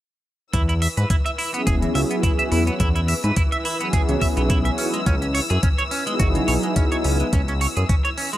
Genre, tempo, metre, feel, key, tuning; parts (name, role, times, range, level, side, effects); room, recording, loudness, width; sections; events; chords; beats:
nu-disco, nu disco; 106 BPM; 4/4; swing 55% on 16ths; E major; A4 = 440 Hz
dark studio string section; sustained chords; 0.5-8.4 s; E3 to E6; -30 LUFS; left 2 dB; sidechain pumping
clean electric guitar; riff; 0.5-8.4 s; C#3 to E5; -26 LUFS; right 2 dB; analog chorus
fat analog bass; bass; 0.5-7.8 s; E1 to G#2; -21 LUFS; equal
electronic hi-hat; drums; 0.5-8.4 s; -30 LUFS; equal; studio reverb
electronic kick drum; drums; 0.5-8.0 s; -21 LUFS; equal; studio reverb
warm analog pad; accompaniment; 1.5-8.4 s; F#3 to B4; -25 LUFS; equal; chorus, sidechain pumping, analog delay
digital ambience; -18 LUFS; side -14 dB against mid
0.5-8.4 A section
0.5 E6; 4.8 C#m11
| 0.54 1.10 1.67 2.23 | 2.80 3.37 3.93 4.50 | 5.06 5.63 6.20 6.76 | 7.33 7.89